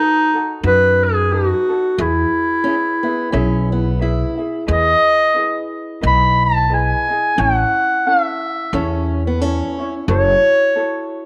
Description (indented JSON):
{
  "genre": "Hawaiian",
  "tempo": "89 BPM",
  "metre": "4/4",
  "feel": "swing 57% on 8ths",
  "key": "E major",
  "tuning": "A4 = 440 Hz",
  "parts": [
    { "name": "warm clarinet", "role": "melody", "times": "0.0-11.1 s", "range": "D#4 to B5", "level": "-18 LUFS", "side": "equal", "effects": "none" },
    { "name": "ukulele", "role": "accompaniment", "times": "0.0-11.3 s", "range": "C#4 to E5", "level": "-28 LUFS", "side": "equal", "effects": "none" },
    { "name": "upright bass", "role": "bass", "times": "0.6-10.3 s", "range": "F#1 to F#2", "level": "-21 LUFS", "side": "equal", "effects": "none" },
    { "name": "fingerpicked acoustic archtop guitar", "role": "second line", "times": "2.6-4.6, 8.7-9.9 s", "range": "B3 to E4", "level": "-26 LUFS", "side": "equal", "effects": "none" }
  ],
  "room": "moderate echo chamber reverb, RT60 2.0 s",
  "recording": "none",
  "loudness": "-17 LUFS",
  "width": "mono",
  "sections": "0.0-4.7 A section; 4.7-11.3 A section",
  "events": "none",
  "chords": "0.0 B7; 2.0 E; 4.7 Emaj7; 7.4 A; 10.1 F#m7",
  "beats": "0.63 1.30 | 1.98 2.65 3.33 4.00 | 4.68 5.35 6.03 6.70 | 7.37 8.05 8.72 9.40 | 10.07 10.74"
}